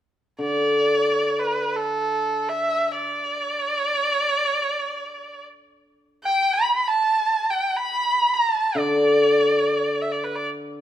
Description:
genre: chinese traditional, Chinese chamber ensemble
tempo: free time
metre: none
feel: none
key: D zhi mode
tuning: A4 = 436 Hz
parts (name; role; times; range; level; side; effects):
- rich erhu; melody; 0.4-10.5 s; A4 to B5; -22 LUFS; right 1 dB; none
- hammered dulcimer; accompaniment; 0.4-3.1, 8.8-10.8 s; D3; -22 LUFS; left 1 dB; none
room: moderate recital hall reverb, RT60 1.6 s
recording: none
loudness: -20 LUFS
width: side -11 dB against mid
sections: 0.0-10.8 A section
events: none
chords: none

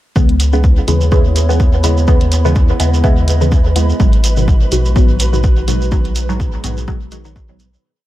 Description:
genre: dub techno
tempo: 125 BPM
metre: 4/4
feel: swing 55% on 16ths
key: C# dorian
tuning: A4 = 444 Hz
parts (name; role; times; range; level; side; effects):
- warbly tape-like pad; sustained chords; 0.9-7.8 s; G#3 to D#5; -26 LUFS; right 1 dB; chorus, built-in reverb, sidechain pumping
- filtered dub chord stab; stabs; 0.2-7.7 s; G#2 to E4; -18 LUFS; equal; phaser, cassette tape, sidechain pumping, dub echo
- warm sub bass; bass; 0.2-7.8 s; G#1 to D#2; -15 LUFS; equal; sidechain pumping
- electronic kick drum; drums; 0.2-7.5 s; none; -12 LUFS; equal; studio reverb
- shekere; percussion; 0.2-7.8 s; none; -27 LUFS; right 3 dB; dub echo
- flickering grainy texture; texture; 0.5-7.8 s; B4; -29 LUFS; equal; built-in reverb, sidechain pumping
- electronic hi-hat; drums; 0.3-7.7 s; none; -23 LUFS; right 1 dB; studio reverb
room: little or no reverb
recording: echo-heavy mix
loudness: -10 LUFS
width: side -15 dB against mid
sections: 0.2-7.8 groove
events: fade-out 5.3-7.8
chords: 0.2 C#m7; 4.0 G#m7

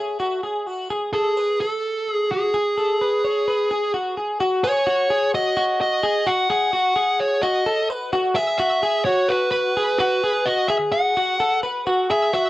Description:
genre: indie pop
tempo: 129 BPM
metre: 4/4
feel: straight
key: unclear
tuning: A4 = 440 Hz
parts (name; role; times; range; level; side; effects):
- direct-recorded clean electric guitar; arpeggios; 0.0-12.5 s; F#4 to C#5; -22 LUFS; equal; lush chorus
- fuzz lead guitar; melody; 1.1-12.5 s; G#4 to F#5; -20 LUFS; equal; distortion
room: wet studio reverb, RT60 0.5 s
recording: worn, warbling old tape, cassette tape, warbly pitch drift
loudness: -18 LUFS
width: side -16 dB against mid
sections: 0.0-4.4 A section; 4.4-12.5 B section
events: none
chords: 0.0 N.C.; 0.7 F#madd9; 4.4 N.C.

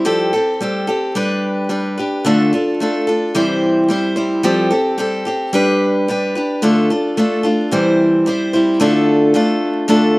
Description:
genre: rock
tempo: 110 BPM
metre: 4/4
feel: straight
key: D dorian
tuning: A4 = 440 Hz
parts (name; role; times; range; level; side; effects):
- picked steel-string acoustic guitar; solo; 0.0-10.2 s; C3 to C5; -14 LUFS; equal; none
room: little or no reverb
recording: recorded outdoors, with no room sound, vinyl crackle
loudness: -14 LUFS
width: side -22 dB against mid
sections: 0.1-8.8 A section; 8.8-10.2 B section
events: none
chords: 0.1 Fadd9; 1.1 G; 2.2 Dm; 3.3 C; 4.4 Fadd9; 5.5 G; 6.6 Dm; 7.7 C; 8.8 Dm

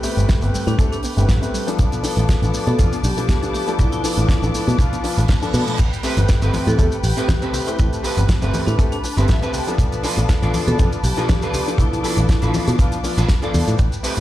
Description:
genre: nu-disco, nu disco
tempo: 120 BPM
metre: 4/4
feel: swing 55% on 16ths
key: unclear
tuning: A4 = 437 Hz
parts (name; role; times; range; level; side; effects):
- warm concert grand piano; accompaniment; 0.0-14.2 s; F3 to B4; -25 LUFS; left 2 dB; sidechain pumping, tape echo
- muted studio string section; sustained chords; 0.0-14.2 s; B4 to D6; -30 LUFS; left 3 dB; vintage 12-bit sampler grit, sidechain pumping
- soft round pluck; arpeggios; 0.0-5.8 s; G3 to D4; -30 LUFS; left 3 dB; chorus, sidechain pumping, tape echo
- damped 70s drum kit; drums; 0.0-14.2 s; crash cymbal, hi-hat, shaker, snare drum; -28 LUFS; right 1 dB; studio reverb
- picked electric bass with an envelope filter; bass; 0.2-14.2 s; G1 to B2; -19 LUFS; equal; none
- kick drum; drums; 0.3-13.9 s; none; -17 LUFS; equal; studio reverb
- vibraphone with hard mallets; melody; 0.7-12.7 s; D4 to A4; -29 LUFS; right 1 dB; vintage 12-bit sampler grit, tape echo
- reverse cymbal; sound effects; 5.0-5.8 s; none; -32 LUFS; right 6 dB; none
- maracas, bongos and congas; percussion; 5.8-14.2 s; none; -28 LUFS; left 2 dB; none
- clean electric guitar; riff; 6.0-14.2 s; C4 to G5; -28 LUFS; right 3 dB; ensemble chorus
room: studio reverb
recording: played on a big sound system in a bare room, large studio reverb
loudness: -16 LUFS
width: side -14 dB against mid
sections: 0.0-14.2 A section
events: reverse cymbal 5.0-5.8; clean electric guitar fill 9.0-9.8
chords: 0.0 Am9; 1.8 Bm7b5; 5.8 Am9; 9.8 Bm7b5

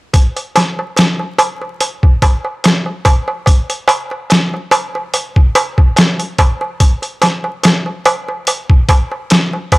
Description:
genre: trip hop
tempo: 72 BPM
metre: 4/4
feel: swing 54% on 16ths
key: none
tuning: none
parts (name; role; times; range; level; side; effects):
- trip hop sampler-style drum kit; drums; 0.1-9.8 s; hi-hat, kick drum, snare drum; -11 LUFS; equal; none
- darbuka; percussion; 0.1-9.8 s; none; -16 LUFS; right 1 dB; none
room: little or no reverb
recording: dry, gritty hardware recording, vinyl crackle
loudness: -11 LUFS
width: side -21 dB against mid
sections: 0.1-9.8 A section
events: none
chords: none

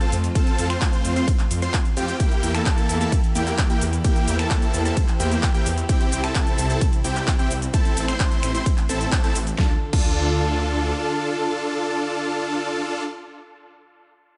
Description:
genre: EDM, festival progressive house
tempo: 130 BPM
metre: 4/4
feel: straight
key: D minor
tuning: A4 = 440 Hz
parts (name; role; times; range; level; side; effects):
- dark chamber string section; sustained chords; 0.0-12.7 s; C3 to C5; -34 LUFS; equal; sidechain pumping
- unison lead; arpeggios; 0.0-13.0 s; G5 to C6; -34 LUFS; equal; sidechain pumping, dub echo
- big supersaw lead; riff; 0.0-13.0 s; Bb3 to C5; -28 LUFS; equal; sidechain pumping, dub echo
- big-room dance drum kit; drums; 0.0-10.1 s; crash cymbal, finger snaps, handclaps, hi-hat, ride cymbal, shaker, snare drum; -32 LUFS; equal; none
- detuned saw bass; bass; 0.1-10.9 s; A1 to F2; -28 LUFS; equal; chorus, sidechain pumping
- electronic kick drum; drums; 0.4-10.1 s; none; -23 LUFS; equal; none
room: light reverb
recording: nothing above 10.8 kHz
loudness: -22 LUFS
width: mono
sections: 0.0-9.6 A section; 9.6-13.3 B section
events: drop 0.0-9.6; band accent 9.1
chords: 0.0 F; 2.2 Edim; 5.9 C; 7.7 Am; 9.6 Dm

